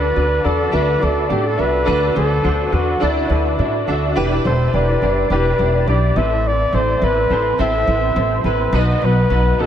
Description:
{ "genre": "piano-driven pop", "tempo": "105 BPM", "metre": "4/4", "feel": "swing 56% on 16ths", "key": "unclear", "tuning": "A4 = 435 Hz", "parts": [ { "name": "warm flugelhorn", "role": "melody", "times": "0.0-9.7 s", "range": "E4 to E5", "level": "-19 LUFS", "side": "equal", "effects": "none" }, { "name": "clear grand piano", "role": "accompaniment", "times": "0.0-9.7 s", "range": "A2 to E5", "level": "-20 LUFS", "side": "equal", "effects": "ensemble chorus" }, { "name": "upright bass", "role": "bass", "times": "0.0-9.7 s", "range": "E1 to A2", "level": "-19 LUFS", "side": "equal", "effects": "none" } ], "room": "moderate huge ambient reverb, RT60 4.3 s", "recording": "dreamy mix soaked in reverb", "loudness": "-14 LUFS", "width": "side -9 dB against mid", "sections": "0.0-9.7 A section", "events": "none", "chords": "0.0 D; 4.2 Em7; 6.2 Amadd9; 8.7 B" }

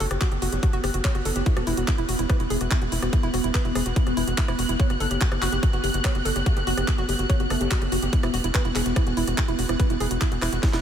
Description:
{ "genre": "psychedelic trance", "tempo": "144 BPM", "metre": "4/4", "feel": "straight", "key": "unclear", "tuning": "A4 = 439 Hz", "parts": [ { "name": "swarming drone", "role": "sustained chords", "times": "0.0-10.8 s", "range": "B3", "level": "-28 LUFS", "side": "right 1 dB", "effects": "built-in reverb, sidechain pumping" }, { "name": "woody wave-folded pluck", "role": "riff", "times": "0.0-10.8 s", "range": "E4 to C#5", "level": "-30 LUFS", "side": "moving between left 3 dB and right 6 dB", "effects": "chorus, auto-pan, sidechain pumping, analog delay" }, { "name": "tight sequencer bass", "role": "bass", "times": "0.0-10.8 s", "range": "E1 to F#1", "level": "-27 LUFS", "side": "equal", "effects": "none" }, { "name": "garage drum kit", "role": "drums", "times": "0.0-10.8 s", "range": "handclaps, hi-hat, rim click, snare drum", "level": "-30 LUFS", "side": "equal", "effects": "none" }, { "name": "electronic kick drum", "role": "drums", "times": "0.2-10.7 s", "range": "none", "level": "-22 LUFS", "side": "equal", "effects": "none" }, { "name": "vowel-sweep wobble bass", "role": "second line", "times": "0.5-1.4, 5.7-7.8 s", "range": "E3 to B3", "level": "-44 LUFS", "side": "right 2 dB", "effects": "none" } ], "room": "light reverb, digital ambience", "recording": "none", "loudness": "-21 LUFS", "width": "side -9 dB against mid", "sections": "0.0-10.8 A section", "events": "drum fill 10.6", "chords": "0.0 F#5; 1.5 E5; 4.8 F#5; 8.1 E5" }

